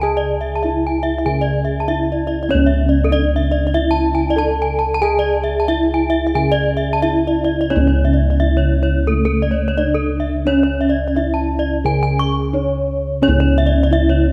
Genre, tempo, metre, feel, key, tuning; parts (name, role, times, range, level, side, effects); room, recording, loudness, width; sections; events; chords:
Balinese gamelan; 87-97 BPM; 4/4; straight; C# pelog; A4 = 441 Hz
gamelan-type bronze metallophone; melody; 0.0-14.3 s; A3 to C#5; -23 LUFS; equal
gamelan-type bronze metallophone; arpeggios; 0.0-14.2 s; A4 to C#6; -23 LUFS; equal
gamelan-type bossed gongs; bass; 0.0-14.3 s; C#2 to G#4; -20 LUFS; equal
light reverb; -17 LUFS; mono
0.0-7.7 A section; 7.7-14.3 B section